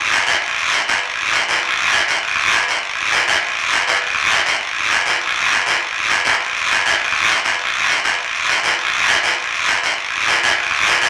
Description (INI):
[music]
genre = latin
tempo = 201 BPM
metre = 4/4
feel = straight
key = none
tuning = none
[part]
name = guiro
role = percussion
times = 0.1-11.1 s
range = none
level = -16 LUFS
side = equal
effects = none
[sound]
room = wet studio reverb, RT60 0.9 s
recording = vinyl crackle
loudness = -16 LUFS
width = mono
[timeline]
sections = 0.0-4.0 A section; 4.0-11.1 B section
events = none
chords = none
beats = 0.14 | 0.43 0.73 1.03 1.33 | 1.63 1.93 2.23 2.53 | 2.83 3.12 3.42 3.72 | 4.02 4.32 4.62 4.92 | 5.21 5.51 5.81 6.11 | 6.41 6.71 7.00 7.30 | 7.60 7.90 8.20 8.49 | 8.79 9.09 9.39 9.68 | 9.98 10.28 10.58 10.87